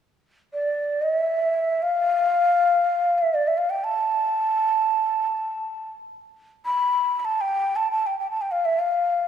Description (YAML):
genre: arabic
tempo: free time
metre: none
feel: none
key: unclear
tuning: A4 = 438 Hz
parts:
  - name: breathy mellow ney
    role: melody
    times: 0.5-9.3 s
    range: D5 to B5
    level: -20 LUFS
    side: equal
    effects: none
room: moderate concert hall reverb, RT60 2.4 s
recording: minimal, uncompressed stereo recording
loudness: -20 LUFS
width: side -8 dB against mid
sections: 0.2-9.3 A section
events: none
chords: none